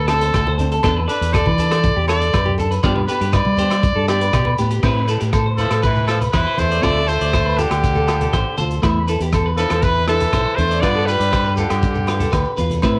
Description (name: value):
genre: highlife guitar band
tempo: 120 BPM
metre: 4/4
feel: straight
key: A minor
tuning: A4 = 440 Hz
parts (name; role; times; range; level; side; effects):
- brilliant trumpet; melody; 0.0-12.5 s; G4 to D5; -24 LUFS; equal; cassette tape
- clean electric guitar; arpeggios; 0.0-13.0 s; G4 to D5; -26 LUFS; equal; cassette tape, analog delay
- fingered electric bass; bass; 0.0-13.0 s; A1 to G3; -23 LUFS; equal; none
- clean electric guitar; accompaniment; 0.1-13.0 s; F3 to B4; -27 LUFS; equal; tremolo, cassette tape
- crunchy breakbeat drum kit; drums; 0.1-12.9 s; crash cymbal, hi-hat, kick drum, rim click; -26 LUFS; equal; cassette tape
- agogo bells; percussion; 0.1-13.0 s; none; -32 LUFS; equal; none
- shekere; percussion; 0.1-12.9 s; none; -32 LUFS; equal; none
- congas; percussion; 0.5-12.8 s; none; -30 LUFS; equal; none
- breathy tenor saxophone; second line; 5.6-12.5 s; D3 to B3; -28 LUFS; equal; cassette tape
room: moderate studio reverb, RT60 0.6 s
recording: home recording on cassette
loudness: -18 LUFS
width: mono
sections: 0.0-4.8 A section; 4.8-13.0 B section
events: trumpet solo 0.0-4.8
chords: 0.0 D7(no3); 0.8 E7sus4; 2.8 G; 4.8 Amadd9; 6.8 Dm7; 8.8 E7sus4; 10.8 G7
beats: 0.34 | 0.84 1.34 1.83 2.33 | 2.83 3.33 3.83 4.33 | 4.83 5.33 5.83 6.33 | 6.83 7.33 7.83 8.33 | 8.83 9.33 9.83 10.33 | 10.83 11.33 11.83 12.33 | 12.83